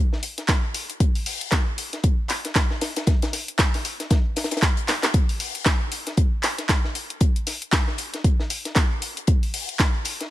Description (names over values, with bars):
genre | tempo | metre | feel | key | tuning
house | 116 BPM | 4/4 | swing 58% on 16ths | none | none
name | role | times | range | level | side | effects
deep reggae drum kit | drums | 0.1-10.3 s | hi-hat, snare drum | -30 LUFS | left 2 dB | sidechain pumping on hats, high-pass filter on hats, high-pass filter on snare, high-pass filter on room
deep house drum kit | drums | 0.2-10.3 s | handclaps, hi-hat | -25 LUFS | equal | none
electronic kick drum | drums | 0.5-9.9 s | none | -20 LUFS | equal | none
room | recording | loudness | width
little or no reverb | none | -20 LUFS | side -15 dB against mid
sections
0.0-10.3 A section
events
drum fill 4.9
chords
none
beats
0.49 | 1.00 1.52 2.04 2.56 | 3.07 3.59 4.11 4.62 | 5.14 5.66 6.18 6.69 | 7.21 7.73 8.24 8.76 | 9.28 9.80